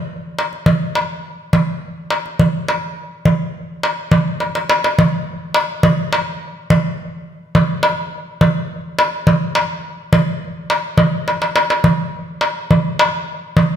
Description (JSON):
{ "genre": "arabic", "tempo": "70 BPM (dotted quarters)", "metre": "6/8", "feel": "straight", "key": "none", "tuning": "none", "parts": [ { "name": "darbuka", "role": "percussion", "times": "0.4-13.7 s", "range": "none", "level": "-15 LUFS", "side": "equal", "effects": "none" } ], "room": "moderate recital hall reverb, RT60 1.6 s", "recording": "none", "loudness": "-15 LUFS", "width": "side -9 dB against mid", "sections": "0.0-5.0 A section; 5.0-13.8 B section", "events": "drum fill 4.4-5.0, 11.3-11.9", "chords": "none" }